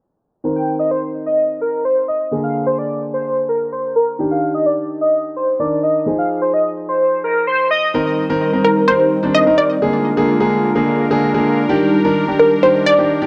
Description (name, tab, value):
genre	pop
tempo	128 BPM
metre	4/4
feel	straight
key	C minor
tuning	A4 = 441 Hz
part	clear concert grand piano	accompaniment	0.4-13.3 s	D3 to Bb4	-21 LUFS	equal	cassette tape, plate reverb
part	airy dreamy lead	melody	0.6-7.8 s	Bb4 to G5	-19 LUFS	equal	chorus, cassette tape, plate reverb, tape echo
part	sweeping resonant pad	sustained chords	7.9-13.3 s	G3 to Bb4	-22 LUFS	equal	chorus, cassette tape
part	unison pluck	melody	8.6-13.3 s	Bb4 to Eb5	-16 LUFS	equal	cassette tape, plate reverb, tape echo
room	moderate booth ambience, RT60 0.2 s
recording	home recording on cassette, low-pass filter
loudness	-16 LUFS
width	mono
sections	0.4-7.9 A section; 7.9-13.3 B section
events	filter sweep 0.4-7.9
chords	0.4 Cm7; 2.3 Bb7; 4.2 Ebmaj7; 6.1 Fm7; 7.9 Cm7; 9.8 Bb7; 11.7 Ebmaj7